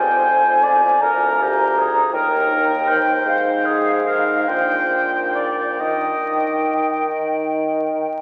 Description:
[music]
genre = classical, slow romantic movement for wind quintet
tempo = 43-56 BPM (dotted quarters)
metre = 6/8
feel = rubato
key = Eb major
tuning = A4 = 440 Hz
[part]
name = mellow hollow silver concert flute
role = melody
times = 0.0-8.1 s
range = F5 to Bb5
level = -22 LUFS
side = equal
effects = none
[part]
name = warm oboe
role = second line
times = 0.0-7.2 s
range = G4 to Eb5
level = -24 LUFS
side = equal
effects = none
[part]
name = dark clarinet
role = accompaniment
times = 0.0-7.2 s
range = G4 to Eb5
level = -29 LUFS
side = equal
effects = none
[part]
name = mellow French horn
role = accompaniment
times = 0.0-8.2 s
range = D4 to F4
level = -33 LUFS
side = equal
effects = none
[part]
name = warm bassoon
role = bass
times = 0.0-8.1 s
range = D2 to Eb3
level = -26 LUFS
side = equal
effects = none
[sound]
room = wet church reverb, RT60 3.7 s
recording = very old 78 rpm record, vinyl crackle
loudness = -18 LUFS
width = mono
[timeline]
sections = 0.0-8.2 A section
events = none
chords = 0.0 Fm; 1.0 Bb/D; 2.1 Eb; 3.3 Ab5; 4.5 Bb69; 5.8 Eb

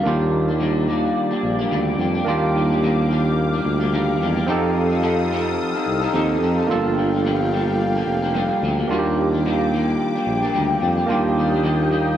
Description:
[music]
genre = indie pop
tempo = 109 BPM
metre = 4/4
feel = swing 55% on 16ths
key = Eb lydian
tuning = A4 = 440 Hz
[part]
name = barky tine electric piano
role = accompaniment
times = 0.0-12.2 s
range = Bb3 to A4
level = -23 LUFS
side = right 4 dB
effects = none
[part]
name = electric guitar through a small old amp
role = accompaniment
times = 0.0-12.2 s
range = G2 to A4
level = -23 LUFS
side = left 2 dB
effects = wide subtle chorus, vibrato effect
[part]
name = phased analog pad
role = sustained chords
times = 0.4-12.2 s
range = G4 to Eb6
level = -26 LUFS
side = left 1 dB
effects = phaser, chorus
[part]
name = mellow tuba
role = bass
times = 0.1-12.2 s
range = F1 to F2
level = -22 LUFS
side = equal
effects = none
[sound]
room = wet spring reverb, RT60 1.6 s, digital ambience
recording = dark, warm production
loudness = -18 LUFS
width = side -10 dB against mid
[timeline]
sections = 0.1-12.2 A section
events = none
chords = 0.1 Ebmaj7; 4.5 F7; 6.7 Gm7; 8.9 Ebmaj7

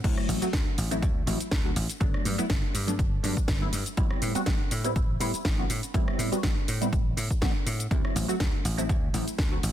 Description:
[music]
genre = filtered disco house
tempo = 122 BPM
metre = 4/4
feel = swing 54% on 16ths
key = A dorian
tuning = A4 = 440 Hz
[part]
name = funky polysynth comp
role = accompaniment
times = 0.0-9.6 s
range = F#3 to F#4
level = -32 LUFS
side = equal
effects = chorus, phaser, sidechain pumping
[part]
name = dry thumbed slap bass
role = bass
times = 0.0-9.7 s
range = G1 to A2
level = -31 LUFS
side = equal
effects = sidechain pumping
[part]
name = electronic kick drum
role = drums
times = 0.0-9.5 s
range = none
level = -28 LUFS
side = equal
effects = none
[part]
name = house drum kit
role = drums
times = 0.0-9.7 s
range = crash cymbal, hi-hat, rim click, shaker, snare drum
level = -33 LUFS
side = equal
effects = overdrive, sidechain pumping on hats, sidechain pumping on perc, sidechain pumping on cymbals
[sound]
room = light reverb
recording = dense, heavily limited modern master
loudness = -25 LUFS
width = side -11 dB against mid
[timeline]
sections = 0.0-9.7 A section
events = none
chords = 0.0 D7; 2.0 Gmaj7; 4.0 Am9; 7.9 D7

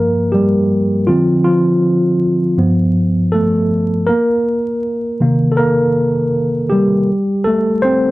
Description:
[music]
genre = hip hop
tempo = 80 BPM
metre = 4/4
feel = swing 61% on 16ths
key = G minor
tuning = A4 = 441 Hz
[part]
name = tine electric piano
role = solo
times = 0.0-8.1 s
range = G2 to C5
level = -12 LUFS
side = equal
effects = medium stereo tremolo, cassette tape, low-pass filter
[sound]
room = wet studio ambience, RT60 0.5 s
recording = vinyl crackle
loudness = -12 LUFS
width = side -18 dB against mid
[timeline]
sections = 0.0-8.1 A section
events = tine electric piano solo 0.0-8.1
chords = 0.0 Gm7; 1.1 Dm7; 2.6 G7; 4.1 Cm7; 7.1 Fadd9 (rootless)

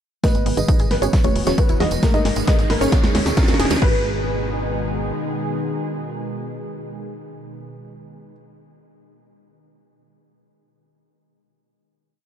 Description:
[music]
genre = uplifting trance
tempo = 134 BPM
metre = 4/4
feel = straight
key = G# minor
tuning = A4 = 436 Hz
[part]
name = wide unison pluck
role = melody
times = 0.2-8.3 s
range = C#4 to D#5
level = -27 LUFS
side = equal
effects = none
[part]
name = dark baby grand piano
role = second line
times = 0.2-8.3 s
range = A#3 to B4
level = -29 LUFS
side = left 1 dB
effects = dub echo
[part]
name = warm baby grand piano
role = second line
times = 0.2-8.3 s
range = B4 to D#5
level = -33 LUFS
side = equal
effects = sidechain pumping, low-pass filter, dub echo
[part]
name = lush unison pad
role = sustained chords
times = 0.2-8.2 s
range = A#2 to G#4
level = -28 LUFS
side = equal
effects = chorus, phaser, sidechain pumping
[part]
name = wide unison pluck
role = arpeggios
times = 0.2-4.0 s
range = F#3 to B4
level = -30 LUFS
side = right 2 dB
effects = sidechain pumping, dub echo
[part]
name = big-room dance drum kit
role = drums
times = 0.2-3.9 s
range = congas, crash cymbal, hi-hat, snare drum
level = -26 LUFS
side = equal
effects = none
[part]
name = electronic kick drum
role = drums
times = 0.2-3.9 s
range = none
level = -18 LUFS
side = equal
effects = none
[part]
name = tambourine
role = percussion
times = 0.2-3.8 s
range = none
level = -34 LUFS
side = right 5 dB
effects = none
[part]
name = riser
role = sound effects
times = 1.4-3.8 s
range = none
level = -32 LUFS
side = right 1 dB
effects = none
[part]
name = tight sequencer bass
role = bass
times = 0.3-5.1 s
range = D#1 to E2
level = -26 LUFS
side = equal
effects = tube saturation, sidechain pumping
[sound]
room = light reverb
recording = dark, warm production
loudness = -17 LUFS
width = side -9 dB against mid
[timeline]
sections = 0.2-3.8 build; 3.8-7.4 final chord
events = build-up 0.2-3.8; drum fill 0.2-3.8; filter sweep on synth pluck 0.2-3.8; filter sweep on synth arpeggio sound 0.2-3.8; filter sweep on grand piano 0.2-3.8; riser 1.4-3.8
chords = 0.2 G#m; 1.1 Eadd9; 2.0 G#m; 2.9 D#sus4; 3.8 G#m

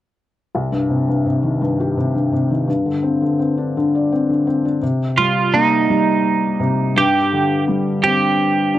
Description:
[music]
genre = pop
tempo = 56 BPM (dotted quarters)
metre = 6/8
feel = straight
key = C minor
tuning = A4 = 440 Hz
[part]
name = felt-muted upright piano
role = accompaniment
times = 0.5-8.8 s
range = C2 to D5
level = -17 LUFS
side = left 2 dB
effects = none
[part]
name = twelve-string electric guitar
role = melody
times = 5.2-8.8 s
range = Eb4 to G4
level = -16 LUFS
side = right 5 dB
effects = spring reverb
[sound]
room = moderate booth ambience, RT60 0.3 s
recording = dry, close 1970s-style studio recording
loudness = -15 LUFS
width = side -13 dB against mid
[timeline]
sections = 0.5-4.8 A section; 4.8-8.8 B section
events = none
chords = 0.5 Cm; 2.7 Gsus4; 4.8 Cm7; 7.0 Gsus4

